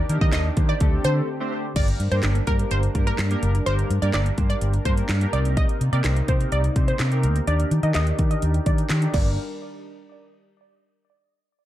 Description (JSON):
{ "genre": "dance-pop", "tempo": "126 BPM", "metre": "4/4", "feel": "straight", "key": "G minor", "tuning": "A4 = 440 Hz", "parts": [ { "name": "chorused polysynth", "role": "accompaniment", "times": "0.0-9.4 s", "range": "A3 to C5", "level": "-31 LUFS", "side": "equal", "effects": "sidechain pumping, low-pass filter" }, { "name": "warm analog pad", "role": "sustained chords", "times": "0.0-9.4 s", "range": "C3 to D5", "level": "-34 LUFS", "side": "equal", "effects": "chorus, sidechain pumping, low-pass filter" }, { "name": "vintage muted fingered electric bass", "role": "bass", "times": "0.1-9.4 s", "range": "F#1 to Eb3", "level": "-22 LUFS", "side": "equal", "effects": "sidechain pumping" }, { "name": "house drum kit", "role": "drums", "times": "0.1-9.3 s", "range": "crash cymbal, handclaps, hi-hat, kick drum, snare drum", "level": "-24 LUFS", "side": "equal", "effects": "none" }, { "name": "wide unison pluck", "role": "melody", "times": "0.2-9.4 s", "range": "Bb4 to Eb5", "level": "-29 LUFS", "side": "right 1 dB", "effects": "low-pass filter, tape echo" }, { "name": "group handclap", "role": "percussion", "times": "0.3-0.4, 6.0-9.4 s", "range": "none", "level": "-41 LUFS", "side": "left 3 dB", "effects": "none" } ], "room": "light reverb", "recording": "dark, warm production", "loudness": "-19 LUFS", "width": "side -13 dB against mid", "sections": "0.0-1.8 A section; 1.8-9.4 B section; 9.4-11.3 C section", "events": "drop 0.0-1.8; break 1.3-1.8; filter sweep 1.8-9.4", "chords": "0.0 Ebmaj7; 0.8 D7sus4; 1.8 Gm; 5.3 Cm7; 7.5 Ebmaj7; 9.1 Gm; 9.4 N.C." }